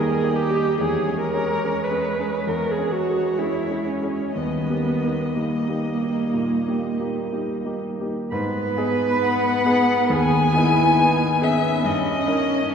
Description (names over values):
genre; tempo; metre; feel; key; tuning
classical, slow romantic movement for piano quartet; 60-72 BPM; 4/4; rubato; G# minor; A4 = 441 Hz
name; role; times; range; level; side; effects
muted violin; melody; 0.0-12.7 s; C#5 to G#5; -25 LUFS; left 4 dB; none
muted cello; second line; 0.0-12.7 s; G3 to B4; -27 LUFS; right 3 dB; none
clear baby grand piano; accompaniment; 0.0-12.7 s; D#2 to A#4; -24 LUFS; left 1 dB; none
muted viola; accompaniment; 0.0-12.7 s; A#3 to B4; -25 LUFS; right 2 dB; none
room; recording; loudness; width
wet church reverb, RT60 3.8 s; heard from further back in the room; -19 LUFS; side -7 dB against mid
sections
0.0-8.3 A section; 8.3-12.7 B section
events
none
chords
0.0 D#; 0.8 C#m/E; 4.4 D#; 8.3 G#m; 11.8 D#7/G